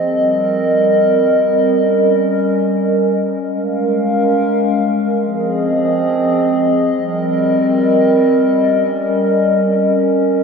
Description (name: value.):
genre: hip hop.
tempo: free time.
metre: none.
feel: none.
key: Bb dorian.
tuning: A4 = 439 Hz.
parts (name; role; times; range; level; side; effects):
warbly tape-like pad; solo; 0.0-10.4 s; F3 to F5; -12 LUFS; equal; chorus, built-in reverb, tape echo.
room: wet lush hall reverb, RT60 3.0 s.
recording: rough home demo mix.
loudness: -12 LUFS.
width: side -5 dB against mid.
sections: 0.0-3.5 A section; 3.5-10.4 B section.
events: none.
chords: 0.0 Cm7; 1.7 Eb7; 3.5 Bbm7; 5.2 Fm7; 6.9 Cm7; 8.7 Eb7.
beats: free time.